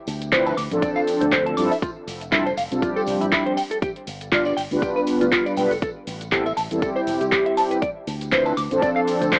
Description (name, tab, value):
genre	nu-disco, nu disco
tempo	120 BPM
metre	4/4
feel	swing 56% on 16ths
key	unclear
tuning	A4 = 440 Hz
part	fingered electric bass with an envelope filter	bass	0.1-9.4 s	E1 to G2	-34 LUFS	equal	none
part	pop drum kit	drums	0.1-9.4 s	handclaps, hi-hat, shaker	-28 LUFS	equal	overdrive
part	tambourine	percussion	0.1-9.4 s	none	-46 LUFS	equal	none
part	mellow synth brass	accompaniment	0.3-9.4 s	F3 to D5	-25 LUFS	equal	chorus, sidechain pumping, analog delay
part	semi-hollow electric guitar	riff	0.3-9.4 s	E4 to D6	-27 LUFS	equal	lush chorus
part	electronic kick drum	drums	0.3-9.4 s	none	-30 LUFS	equal	none
room	light reverb, digital ambience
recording	dry, gritty hardware recording, AM radio sound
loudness	-22 LUFS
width	mono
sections	0.0-9.4 A section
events	none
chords	0.0 Dm9; 1.8 F69; 3.6 G7; 5.8 Am9; 7.8 Dm9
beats	0.33 0.82 1.32 | 1.82 2.33 2.83 3.33 | 3.83 4.33 4.83 5.33 | 5.83 6.33 6.83 7.33 | 7.83 8.32 8.82 9.32